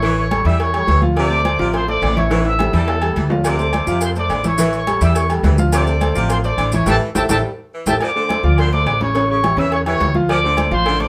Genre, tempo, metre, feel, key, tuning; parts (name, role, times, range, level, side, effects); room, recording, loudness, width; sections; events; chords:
latin, salsa; 210 BPM; 4/4; straight; D minor; A4 = 440 Hz
bright trumpet section; melody; 0.0-11.1 s; A4 to E6; -22 LUFS; equal
clear saxophone section; second line; 0.0-11.1 s; C3 to G3; -28 LUFS; equal
warm concert grand piano; accompaniment; 0.0-11.1 s; C#3 to F5; -23 LUFS; equal
upright bass; bass; 0.0-11.1 s; A1 to F2; -21 LUFS; equal
agogo bells and timbales; percussion; 0.0-11.0 s; -29 LUFS; equal
congas; percussion; 0.0-11.1 s; -28 LUFS; equal
cowbell; percussion; 0.0-11.1 s; -32 LUFS; equal
maracas; percussion; 3.4-7.9 s; -33 LUFS; equal
moderate studio reverb, RT60 0.6 s; -17 LUFS; mono
0.0-8.0 A section; 8.0-11.1 A section
drum fill 2.3-3.4, 6.9-8.0; band accent 6.9-8.0
0.0 A7; 1.2 Dm7; 2.3 A7; 3.4 Dm7; 4.6 A7; 5.7 Dm7; 6.9 A5; 8.0 Dm7; 9.1 A7; 10.3 Dm7